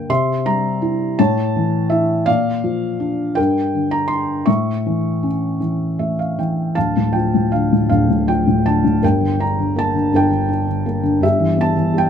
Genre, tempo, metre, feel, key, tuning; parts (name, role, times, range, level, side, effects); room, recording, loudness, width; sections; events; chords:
classical, lyrical solo piano; 54 BPM (dotted quarters); 6/8; rubato; D minor; A4 = 440 Hz
felt-muted upright piano; solo; 0.0-12.1 s; D1 to C#6; -15 LUFS; left 1 dB
little or no reverb; close, detailed microphones; -15 LUFS; side -8 dB against mid
0.0-6.8 A section; 6.8-12.1 B section
felt piano fill 5.6-6.8
0.1 C; 1.2 A; 2.3 Bb; 3.4 Gm; 4.5 A; 6.8 Dm; 9.0 Gm; 11.2 Em/G